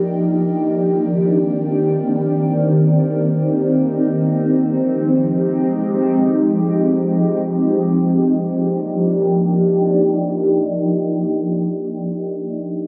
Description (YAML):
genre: hip hop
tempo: free time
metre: none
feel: none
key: Eb major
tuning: A4 = 440 Hz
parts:
  - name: shimmering ambient pad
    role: solo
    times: 0.0-12.0 s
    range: Eb3 to G4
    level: -18 LUFS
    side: equal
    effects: chorus, built-in reverb, phaser, delay
room: moderate huge ambient reverb, RT60 4.2 s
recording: recorded on a phone in the room, club reverb, compression, low-pass filter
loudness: -17 LUFS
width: mono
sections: 0.0-8.2 A section; 8.2-12.0 B section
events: none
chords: 0.5 Cm9; 4.3 Fm9; 8.2 Ebmaj9